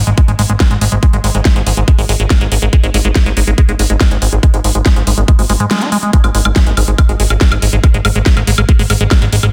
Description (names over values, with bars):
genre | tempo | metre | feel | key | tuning
psychedelic trance | 141 BPM | 4/4 | straight | unclear | A4 = 440 Hz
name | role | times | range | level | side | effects
fat analog bass | bass | 0.0-9.5 s | G#1 to G#2 | -15 LUFS | equal | none
liquid acid bass | riff | 0.1-9.5 s | G#3 to D#4 | -21 LUFS | equal | phaser, sidechain pumping, digital delay
big-room dance drum kit | drums | 0.1-9.5 s | hi-hat, snare drum, woodblock | -20 LUFS | equal | overdrive
electronic kick drum | drums | 0.2-9.2 s | none | -11 LUFS | equal | overdrive
room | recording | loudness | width
little or no reverb | dense, heavily limited modern master | -12 LUFS | mono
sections
0.0-6.1 A section; 6.1-9.5 B section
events
band accent 5.7; drop 6.1-9.5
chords
0.0 G#5